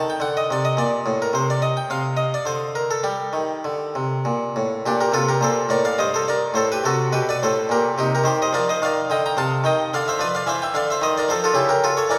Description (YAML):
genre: classical, baroque-style suite movement for harpsichord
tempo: 107 BPM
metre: 3/4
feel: rubato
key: G minor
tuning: A4 = 444 Hz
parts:
  - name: harpsichord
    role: solo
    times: 0.0-12.2 s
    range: G2 to Bb5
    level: -21 LUFS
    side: equal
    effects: none
room: wet church reverb, RT60 2.8 s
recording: recorded in a church or concert hall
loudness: -21 LUFS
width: mono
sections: 0.0-4.8 A section; 4.8-12.2 B section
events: none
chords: 0.0 Cmadd9; 0.8 Bbmaj7; 1.3 N.C.; 3.1 Gm; 4.8 Gm/Bb; 6.5 F#dim/A; 7.7 Gm/Bb; 8.2 Cm/Eb; 9.9 Bdim/D (rootless); 11.0 Cm/Eb; 11.6 A7/C#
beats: 0.21 0.77 | 1.33 1.89 2.46 | 3.05 3.65 4.25 | 4.84 5.42 5.98 | 6.54 7.11 7.67 | 8.23 8.79 9.35 | 9.90 10.46 11.01 | 11.56 12.12